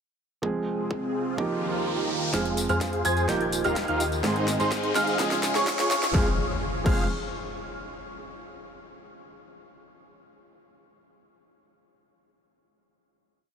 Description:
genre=EDM, festival progressive house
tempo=126 BPM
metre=4/4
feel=straight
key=F minor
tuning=A4 = 440 Hz
part: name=felt-muted upright piano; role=accompaniment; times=0.4-7.0 s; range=Ab2 to Ab4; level=-31 LUFS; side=right 3 dB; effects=sidechain pumping, ping-pong delay
part: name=lush unison pad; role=sustained chords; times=0.7-6.4 s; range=Eb3 to Db6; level=-33 LUFS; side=equal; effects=chorus, phaser, sidechain pumping
part: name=electronic kick drum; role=drums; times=0.4-7.0 s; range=none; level=-27 LUFS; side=left 1 dB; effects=high-pass filter on kick, high-pass filter on room
part: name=riser and impact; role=sound effects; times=1.1-8.1 s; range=none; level=-35 LUFS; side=left 1 dB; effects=none
part: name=clear grand piano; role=arpeggios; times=2.3-7.0 s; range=C6 to Ab6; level=-31 LUFS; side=right 2 dB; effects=sidechain pumping, ping-pong delay
part: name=dense compressed supersaw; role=riff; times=2.3-7.0 s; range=Eb4 to Ab5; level=-30 LUFS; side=equal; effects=sidechain pumping, low-pass filter, ping-pong delay
part: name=fat analog bass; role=bass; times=2.3-7.1 s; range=Eb1 to F2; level=-33 LUFS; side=left 1 dB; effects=sidechain pumping
part: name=big-room dance drum kit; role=drums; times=2.3-7.0 s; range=crash cymbal, hi-hat, snare drum, tambourine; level=-32 LUFS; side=left 1 dB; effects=high-pass filter on snare, low-pass filter on snare, high-pass filter on hats, low-pass filter on hats, high-pass filter on perc, low-pass filter on perc, high-pass filter on cymbals, low-pass filter on cymbals, high-pass filter on room, low-pass filter on room
room=moderate huge ambient reverb, RT60 7.9 s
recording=high-pass filter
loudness=-23 LUFS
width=side -7 dB against mid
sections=0.4-2.3 intro; 2.3-6.1 build; 6.1-8.1 final chord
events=riser 1.1-2.3, 2.3-6.1; kick drops out 1.9-2.3; build-up 2.3-6.1; drum fill 2.3-6.1; filter sweep on supersaw synth 2.3-6.1; filter sweep 2.3-6.1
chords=0.4 Fm; 1.4 Ebadd9; 2.3 Fm; 3.3 Ebadd9; 4.2 Ab; 5.2 Db; 6.1 Fm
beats=| 0.43 0.91 1.38 1.86 | 2.34 2.81 3.29 3.77 | 4.24 4.72 5.19 5.67 | 6.15 6.62 7.10 7.57

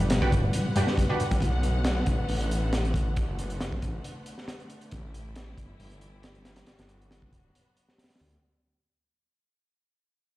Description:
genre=breakbeat, breaks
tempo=137 BPM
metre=4/4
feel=straight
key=unclear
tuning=A4 = 440 Hz
part: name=clear symphonic string section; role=sustained chords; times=0.0-8.4 s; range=D3 to F#5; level=-37 LUFS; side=left 1 dB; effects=vintage 12-bit sampler grit, sidechain pumping, low-pass filter
part: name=deep acid bass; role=riff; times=0.0-1.4 s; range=G2 to G3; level=-29 LUFS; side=equal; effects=ensemble chorus, tape echo
part: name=detuned saw bass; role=bass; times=0.0-8.4 s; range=D1 to D2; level=-30 LUFS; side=equal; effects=none
part: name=congas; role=percussion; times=0.0-1.4 s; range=none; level=-35 LUFS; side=left 1 dB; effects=none
part: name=crunchy breakbeat drum kit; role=drums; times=0.1-8.4 s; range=hi-hat, kick drum, snare drum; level=-29 LUFS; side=equal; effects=none
part: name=orchestra-hit-like synth stab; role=stabs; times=0.2-1.3 s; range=D4 to B4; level=-32 LUFS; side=right 2 dB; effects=built-in reverb, tape echo
room=light reverb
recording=played on a big sound system in a bare room, stone room reverb, vinyl crackle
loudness=-24 LUFS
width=side -16 dB against mid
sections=0.0-8.4 A section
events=fade-out 0.0-8.4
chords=0.0 Gmaj7; 1.4 Bm7; 4.9 A7sus4; 6.7 Gmaj7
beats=0.10 0.54 0.97 | 1.41 1.85 2.29 2.73 | 3.17 3.60 4.04 4.48 | 4.92 5.36 5.79 6.23 | 6.67 7.11 7.54 7.98

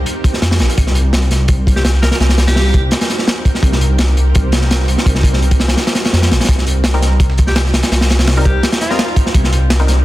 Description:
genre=drum and bass, jungle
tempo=168 BPM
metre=4/4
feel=straight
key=C minor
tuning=A4 = 439 Hz
part: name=dark detuned saw bass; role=bass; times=0.0-10.0 s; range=Bb1 to F2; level=-13 LUFS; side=equal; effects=none
part: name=crunchy breakbeat drum kit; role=drums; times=0.1-10.0 s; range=hi-hat, kick drum, snare drum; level=-14 LUFS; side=equal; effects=none
part: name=bright alto saxophone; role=melody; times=1.8-2.8, 7.5-9.2 s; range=F4 to Bb4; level=-23 LUFS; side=equal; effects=dub echo
part: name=dusty soul sampler-style drum kit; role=drums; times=6.5-10.0 s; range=hi-hat, snare drum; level=-28 LUFS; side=right 2 dB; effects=none
part: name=filtered dub chord stab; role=stabs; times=6.9-9.9 s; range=G3 to Bb4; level=-22 LUFS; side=left 2 dB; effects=chorus, dub echo
room=small room reverb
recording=dense, heavily limited modern master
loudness=-11 LUFS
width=side -16 dB against mid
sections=0.0-10.0 A section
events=none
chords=0.0 Cm7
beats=0.06 0.42 | 0.78 1.13 1.49 1.85 | 2.21 2.56 2.92 3.28 | 3.63 3.99 4.35 4.71 | 5.06 5.42 5.78 6.13 | 6.49 6.85 7.21 7.56 | 7.92 8.28 8.63 8.99 | 9.35 9.71

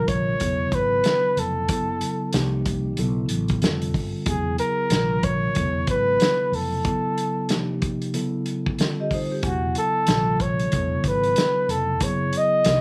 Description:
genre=hip hop, jazz-hop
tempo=93 BPM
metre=4/4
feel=swing 60% on 16ths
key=unclear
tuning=A4 = 440 Hz
part: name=breathy flugelhorn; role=melody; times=0.0-12.8 s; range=F#4 to D#5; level=-25 LUFS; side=equal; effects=none
part: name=mellow tine electric piano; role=accompaniment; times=0.0-12.8 s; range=C3 to G#5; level=-30 LUFS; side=equal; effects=none
part: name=mellow fretless electric bass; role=bass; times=0.0-12.8 s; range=E1 to C2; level=-29 LUFS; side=equal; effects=none
part: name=vintage drum kit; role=drums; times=0.1-12.8 s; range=hi-hat, kick drum, snare drum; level=-28 LUFS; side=equal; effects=none
part: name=vibraphone with medium mallets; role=second line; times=9.0-9.6 s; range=D#4 to D#5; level=-31 LUFS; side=equal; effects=none
room=light reverb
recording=none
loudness=-23 LUFS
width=mono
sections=0.0-12.8 A section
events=break 6.8-9.4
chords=0.4 Amaj9/E; 1.7 F#m7; 2.3 Cm7; 3.0 B9sus4; 3.6 Fadd9; 4.3 E69; 4.9 Bbadd9; 5.6 Amaj9/E; 6.8 F#m7; 7.5 Cm7; 8.1 B9sus4; 8.8 Fadd9; 9.4 E69; 10.1 Bbmaj9; 10.7 Amaj9/E; 12.0 F#sus2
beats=0.39 1.04 | 1.69 2.33 2.98 3.62 | 4.26 4.91 5.55 6.20 | 6.85 7.49 8.14 8.78 | 9.43 10.07 10.72 11.36 | 12.01 12.65

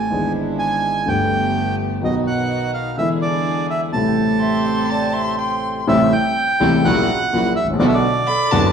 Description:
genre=tango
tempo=125 BPM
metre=4/4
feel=rubato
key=A minor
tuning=A4 = 440 Hz
part: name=bandoneon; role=melody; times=0.0-8.7 s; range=D5 to A5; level=-21 LUFS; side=right 2 dB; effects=none
part: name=warm concert grand piano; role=accompaniment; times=0.0-8.7 s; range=E1 to G#4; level=-19 LUFS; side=left 1 dB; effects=none
part: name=dark chamber string section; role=stabs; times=0.0-8.7 s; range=G#3 to A4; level=-26 LUFS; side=right 3 dB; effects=none
part: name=growling clarinet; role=second line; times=4.4-8.7 s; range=A4 to G5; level=-27 LUFS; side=right 3 dB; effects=none
part: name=warm violin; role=second line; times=4.4-8.7 s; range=A5 to C6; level=-22 LUFS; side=left 2 dB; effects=none
room=wet large studio reverb, RT60 1.3 s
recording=band playing live in one room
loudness=-16 LUFS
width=side -7 dB against mid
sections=0.0-5.9 A section; 5.9-8.7 A section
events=none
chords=0.1 E7/G#; 1.1 Gadd9; 2.0 B; 3.0 E7; 3.9 Am7; 6.8 F#7/A#; 7.8 Bm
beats=| 0.11 0.59 1.07 1.55 | 2.03 2.50 2.98 3.46 | 3.94 4.42 4.91 5.39 | 5.88 6.36 6.85 7.33 | 7.81 8.29

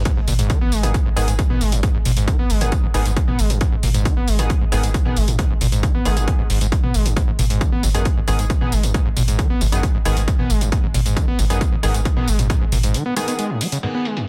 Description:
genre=driving peak-time techno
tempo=135 BPM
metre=4/4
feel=straight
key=G# minor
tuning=A4 = 441 Hz
part: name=screaming distorted acid line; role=riff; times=0.0-14.3 s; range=F#2 to B3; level=-27 LUFS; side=equal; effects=distortion, chorus, sidechain pumping, tape echo
part: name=saturated sub bass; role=bass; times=0.0-12.9 s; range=G#1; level=-23 LUFS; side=equal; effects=overdrive, sidechain pumping, low-pass filter
part: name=electronic kick drum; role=drums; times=0.1-12.6 s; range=none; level=-22 LUFS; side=equal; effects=overdrive, small room ambience
part: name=techno drum kit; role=drums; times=0.1-14.3 s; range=crash cymbal, hi-hat, tambourine, toms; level=-28 LUFS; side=equal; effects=overdrive, sidechain pumping on hats, low-pass filter on hats, small room ambience, sidechain pumping on perc, low-pass filter on perc, sidechain pumping on toms, low-pass filter on toms, sidechain pumping on cymbals, low-pass filter on cymbals
part: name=sync-sweep polysynth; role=stabs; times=0.8-14.3 s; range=D#3 to G#4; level=-29 LUFS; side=equal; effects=chorus, sidechain pumping, tape echo
room=little or no reverb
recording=dense, heavily limited modern master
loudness=-19 LUFS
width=mono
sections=0.0-13.8 A section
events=break 12.9-13.8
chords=0.0 G#m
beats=0.05 0.50 0.94 | 1.39 1.83 2.28 2.72 | 3.17 3.61 4.05 4.50 | 4.94 5.39 5.83 6.28 | 6.72 7.17 7.61 8.05 | 8.50 8.94 9.39 9.83 | 10.28 10.72 11.16 11.61 | 12.05 12.50 12.94 13.39 | 13.83 14.28

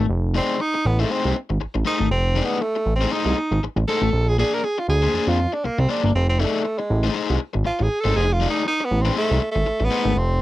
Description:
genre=funk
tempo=119 BPM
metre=4/4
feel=swing 56% on 16ths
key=F mixolydian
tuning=A4 = 440 Hz
part: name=crunchy overdriven guitar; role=accompaniment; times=0.0-10.1 s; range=A3 to D5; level=-25 LUFS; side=left 7 dB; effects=none
part: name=fat analog bass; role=bass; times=0.0-10.4 s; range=F1 to F2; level=-20 LUFS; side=right 1 dB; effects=none
part: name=breathy tenor saxophone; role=melody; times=0.4-10.4 s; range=G#3 to Bb4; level=-22 LUFS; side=right 1 dB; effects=none
room=little or no reverb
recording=dry, close 1970s-style studio recording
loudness=-19 LUFS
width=side -16 dB against mid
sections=0.0-10.4 A section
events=tenor saxophone solo 0.0-10.4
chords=0.0 F7#9; 4.1 Bb9; 6.1 F7#9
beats=| 0.09 0.60 1.10 1.61 | 2.11 2.61 3.12 3.62 | 4.13 4.63 5.13 5.64 | 6.14 6.64 7.15 7.65 | 8.15 8.66 9.16 9.66 | 10.17

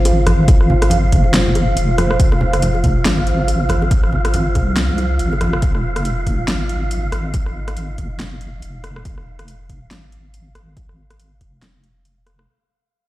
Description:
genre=deep dubstep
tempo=140 BPM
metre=4/4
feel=swing 58% on 16ths, half-time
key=F phrygian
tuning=A4 = 438 Hz
part: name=dark analog pad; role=sustained chords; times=0.0-12.4 s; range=F4 to F5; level=-24 LUFS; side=right 1 dB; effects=chorus
part: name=deep soft wobble bass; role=bass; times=0.0-12.5 s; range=F1 to C2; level=-18 LUFS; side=equal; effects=chorus, tube saturation
part: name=wind-like tuned noise texture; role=texture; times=0.0-12.5 s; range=F5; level=-27 LUFS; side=right 2 dB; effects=built-in reverb
part: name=deep house drum kit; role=drums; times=0.1-12.5 s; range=hi-hat, rim click, snare drum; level=-23 LUFS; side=equal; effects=none
part: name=bongos and congas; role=percussion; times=0.1-5.5 s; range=none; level=-23 LUFS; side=right 1 dB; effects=none
part: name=electronic kick drum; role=drums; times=0.5-11.5 s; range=none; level=-15 LUFS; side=equal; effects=none
room=light reverb, digital ambience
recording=played on a big sound system in a bare room, stone room reverb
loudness=-14 LUFS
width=side -16 dB against mid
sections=0.0-12.5 A section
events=fade-out 0.0-12.5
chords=0.0 Fm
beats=0.05 | 0.48 0.91 1.34 1.77 | 2.19 2.62 3.05 3.48 | 3.91 4.34 4.77 5.19 | 5.62 6.05 6.48 6.91 | 7.34 7.77 8.19 8.62 | 9.05 9.48 9.91 10.34 | 10.77 11.19 11.62 12.05

